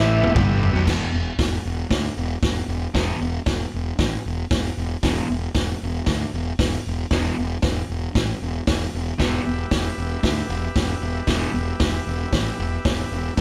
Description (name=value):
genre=garage rock duo or trio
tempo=115 BPM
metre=4/4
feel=straight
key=E minor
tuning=A4 = 440 Hz
part: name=overdriven combo organ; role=sustained chords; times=0.0-0.8, 9.2-13.4 s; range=G4 to E5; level=-34 LUFS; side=equal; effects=none
part: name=fuzz guitar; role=riff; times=0.0-13.4 s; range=E2 to A3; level=-27 LUFS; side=equal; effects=distortion
part: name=fuzz fingered electric bass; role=bass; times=0.0-13.4 s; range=E1 to D2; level=-27 LUFS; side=equal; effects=overdrive
part: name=vintage drum kit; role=drums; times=0.2-13.4 s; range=crash cymbal, hi-hat, kick drum, snare drum, toms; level=-26 LUFS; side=equal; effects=none
room=light reverb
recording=band playing live in one room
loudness=-23 LUFS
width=mono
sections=0.9-13.4 A section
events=drum fill 0.0-0.9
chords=0.0 Em